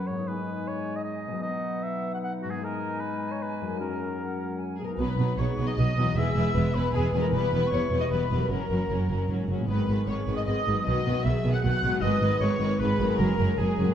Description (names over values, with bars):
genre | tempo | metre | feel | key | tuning
cinematic | 153 BPM | 3/4 | straight | B major | A4 = 440 Hz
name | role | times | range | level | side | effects
clear clarinet | second line | 0.0-13.9 s | C#4 to F#5 | -37 LUFS | left 1 dB | none
small flute group | second line | 0.0-13.9 s | F#5 to F#6 | -35 LUFS | right 1 dB | none
warm oboe | second line | 0.0-4.6 s | F#4 to F#5 | -34 LUFS | right 1 dB | none
warm French horn section | sustained chords | 0.0-13.9 s | F#3 to B4 | -33 LUFS | left 3 dB | none
concert harp | arpeggios | 0.0-13.9 s | E2 to G#4 | -33 LUFS | left 4 dB | none
rich symphonic violin section | melody | 4.8-13.9 s | G#4 to F#5 | -37 LUFS | left 3 dB | none
clear studio violin section | second line | 5.0-13.9 s | B3 to B4 | -39 LUFS | left 4 dB | none
clear symphonic viola section | accompaniment | 5.0-13.9 s | D#3 to C#4 | -32 LUFS | equal | none
clear symphonic double bass section | bass | 5.0-13.9 s | E1 to B1 | -29 LUFS | right 2 dB | none
warm symphonic cello section | bass | 5.0-13.9 s | E2 to B2 | -29 LUFS | right 2 dB | none
room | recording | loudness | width
moderate scoring stage reverb, RT60 1.8 s | dark, warm production | -24 LUFS | side -9 dB against mid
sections
0.0-5.0 A section; 5.0-13.9 A section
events
none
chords
0.3 G#m; 5.0 B; 6.2 E; 7.3 Em; 8.5 F#; 9.7 G#m; 10.9 B; 12.0 G#m; 13.2 F#add9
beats
| 0.27 0.66 1.05 | 1.45 1.84 2.23 | 2.62 3.01 3.40 | 3.79 4.19 4.59 | 4.98 5.38 5.77 | 6.16 6.55 6.94 | 7.33 7.72 8.11 | 8.50 8.90 9.29 | 9.69 10.08 10.47 | 10.86 11.25 11.64 | 12.02 12.41 12.80 | 13.19 13.59